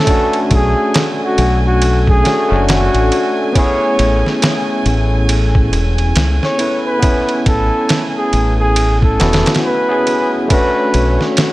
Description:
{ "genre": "trip hop", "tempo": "69 BPM", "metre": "4/4", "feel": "swing 60% on 16ths", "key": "unclear", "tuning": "A4 = 437 Hz", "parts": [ { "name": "trumpet with bucket mute", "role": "melody", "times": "0.0-11.3 s", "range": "F#4 to C#5", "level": "-18 LUFS", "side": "equal", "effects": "dub echo" }, { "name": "overdriven tine electric piano", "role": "accompaniment", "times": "0.0-11.5 s", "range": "A3 to B4", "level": "-18 LUFS", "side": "equal", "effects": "harmonic tremolo, tape echo" }, { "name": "rich chamber string section", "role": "sustained chords", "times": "0.0-11.5 s", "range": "A3 to G#5", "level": "-24 LUFS", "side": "equal", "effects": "vintage 12-bit sampler grit" }, { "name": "trip hop sampler-style drum kit", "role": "drums", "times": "0.1-11.5 s", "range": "kick drum, ride cymbal, snare drum", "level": "-17 LUFS", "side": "equal", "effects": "vintage 12-bit sampler grit" }, { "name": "deep dub fingered electric bass", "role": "bass", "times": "0.5-11.2 s", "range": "E1 to C#2", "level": "-14 LUFS", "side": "equal", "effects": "none" } ], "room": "digital ambience", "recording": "none", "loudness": "-11 LUFS", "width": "side -18 dB against mid", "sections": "0.0-11.5 A section", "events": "none", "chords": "0.0 Bm7; 3.5 Amaj7; 10.5 Bm7" }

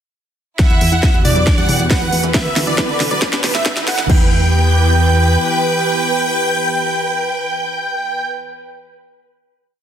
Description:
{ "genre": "uplifting trance", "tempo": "137 BPM", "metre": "4/4", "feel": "straight", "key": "E minor", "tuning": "A4 = 441 Hz", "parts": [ { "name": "big supersaw lead", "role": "melody", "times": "0.6-8.3 s", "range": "D5 to G5", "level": "-20 LUFS", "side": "right 1 dB", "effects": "phaser, sidechain pumping, tape echo" }, { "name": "plucky unison lead", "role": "second line", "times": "0.6-8.3 s", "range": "D5 to G5", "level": "-27 LUFS", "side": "equal", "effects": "lush chorus, cassette tape, sidechain pumping, tape echo" }, { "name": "rich studio violin section", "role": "second line", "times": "0.6-8.3 s", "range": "B3 to E5", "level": "-22 LUFS", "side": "right 1 dB", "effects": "tape echo" }, { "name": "lush unison pad", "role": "sustained chords", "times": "0.6-8.3 s", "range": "D3 to A4", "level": "-24 LUFS", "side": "equal", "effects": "chorus, phaser, sidechain pumping" }, { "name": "analog pluck", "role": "arpeggios", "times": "0.6-4.3 s", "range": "E2 to E4", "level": "-26 LUFS", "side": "right 4 dB", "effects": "chorus, sidechain pumping, tape echo" }, { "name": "electronic kick drum", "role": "drums", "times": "0.6-4.2 s", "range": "none", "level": "-15 LUFS", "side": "equal", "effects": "none" }, { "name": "techno drum kit", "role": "drums", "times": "0.6-4.2 s", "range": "crash cymbal, hi-hat, snare drum, toms", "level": "-20 LUFS", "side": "equal", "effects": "sidechain pumping on hats, sidechain pumping on toms, sidechain pumping on cymbals" }, { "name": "riser", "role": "sound effects", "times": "2.0-4.1 s", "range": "none", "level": "-29 LUFS", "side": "equal", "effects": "none" }, { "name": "solid FM bass", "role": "bass", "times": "0.7-5.4 s", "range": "A1 to E2", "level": "-16 LUFS", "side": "equal", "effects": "sidechain pumping" } ], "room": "moderate lush hall reverb, RT60 1.6 s", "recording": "dense, heavily limited modern master, high-pass filter", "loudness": "-13 LUFS", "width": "side -9 dB against mid", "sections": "0.6-4.1 build; 4.1-7.6 final chord", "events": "build-up 0.6-4.1; drum fill 0.6-4.1; filter sweep on synth pluck 0.6-4.1; filter sweep 0.6-4.1; riser 2.0-4.1", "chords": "0.6 Emadd9; 2.3 D; 3.2 A5; 4.1 Em" }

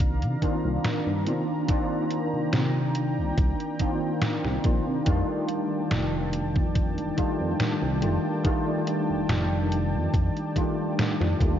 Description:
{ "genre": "vaporwave", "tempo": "71 BPM", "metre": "4/4", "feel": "straight", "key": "unclear", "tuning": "A4 = 445 Hz", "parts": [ { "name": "bell-like tine electric piano", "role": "accompaniment", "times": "0.0-11.6 s", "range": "Eb3 to F4", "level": "-27 LUFS", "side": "equal", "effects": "medium stereo tremolo, ensemble chorus, tape echo" }, { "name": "lush unison pad", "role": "sustained chords", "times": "0.0-11.6 s", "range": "Eb3 to Bb5", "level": "-34 LUFS", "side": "equal", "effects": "chorus" }, { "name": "chorused synth bass", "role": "bass", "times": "0.0-11.6 s", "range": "F1 to C3", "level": "-27 LUFS", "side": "equal", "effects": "none" }, { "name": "detuned 8-bit digital drum machine", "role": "drums", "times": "0.0-11.6 s", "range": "hi-hat, snare drum", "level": "-30 LUFS", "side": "equal", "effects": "vintage 12-bit sampler grit, gated reverb" }, { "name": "electronic kick drum", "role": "drums", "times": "0.0-11.6 s", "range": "none", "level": "-26 LUFS", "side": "equal", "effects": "vintage 12-bit sampler grit" } ], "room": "light reverb", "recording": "cassette tape, nothing above 7.5 kHz", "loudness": "-23 LUFS", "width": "side -10 dB against mid", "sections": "0.0-11.6 A section", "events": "none", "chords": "0.0 Cm11; 5.1 F13" }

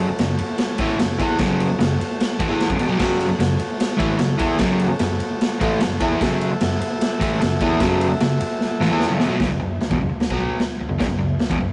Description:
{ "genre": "garage rock duo or trio", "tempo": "150 BPM", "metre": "4/4", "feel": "straight", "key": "F# minor", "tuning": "A4 = 438 Hz", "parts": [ { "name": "overdriven combo organ", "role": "sustained chords", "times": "0.0-9.4 s", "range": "F#4 to E5", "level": "-31 LUFS", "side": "equal", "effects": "none" }, { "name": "crunchy overdriven guitar", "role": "riff", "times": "0.0-11.7 s", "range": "E2 to E4", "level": "-22 LUFS", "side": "equal", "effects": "none" }, { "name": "raw garage drum kit", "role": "drums", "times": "0.2-11.7 s", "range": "crash cymbal, kick drum, ride cymbal, snare drum, toms", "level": "-25 LUFS", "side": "equal", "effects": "none" } ], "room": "light reverb", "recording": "rough rehearsal-room recording, tube saturation, nothing above 10.6 kHz", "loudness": "-20 LUFS", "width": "mono", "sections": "0.0-9.4 A section; 9.4-11.7 B section", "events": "drum fill 8.6-9.4", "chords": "0.0 F#m; 9.4 F#5" }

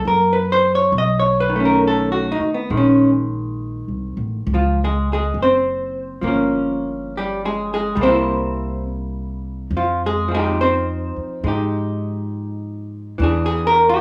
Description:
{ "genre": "jazz ballad", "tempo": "69 BPM", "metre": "4/4", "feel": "swing 67% on 8ths", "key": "F minor", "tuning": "A4 = 441 Hz", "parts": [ { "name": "vintage hollow-body jazz guitar", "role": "accompaniment", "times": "0.0-14.0 s", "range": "D#3 to D#5", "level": "-20 LUFS", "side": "equal", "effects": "none" }, { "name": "upright bass", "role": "bass", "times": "0.1-14.0 s", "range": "Gb1 to Ab2", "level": "-26 LUFS", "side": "equal", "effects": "none" } ], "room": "moderate large studio reverb, RT60 0.7 s", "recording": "small room ambience", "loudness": "-19 LUFS", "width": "mono", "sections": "0.0-14.0 A section", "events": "none", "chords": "0.0 C7(b5, no3); 0.9 B9; 2.7 Bbm11; 6.2 Gm7b5; 8.0 C7; 9.7 Fm9; 13.2 E7" }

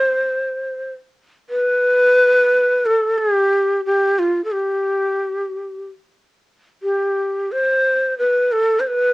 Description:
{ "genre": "turkish", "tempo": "free time", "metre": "none", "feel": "none", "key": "unclear", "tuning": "A4 = 442 Hz", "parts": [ { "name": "breathy bright ney", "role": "solo", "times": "0.0-9.1 s", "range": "F4 to C5", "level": "-16 LUFS", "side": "equal", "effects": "cassette tape" } ], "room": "moderate small room reverb, RT60 0.5 s", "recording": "home recording on cassette", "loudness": "-16 LUFS", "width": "side -21 dB against mid", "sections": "0.0-1.5 A section; 1.5-9.1 B section", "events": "none", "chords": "none" }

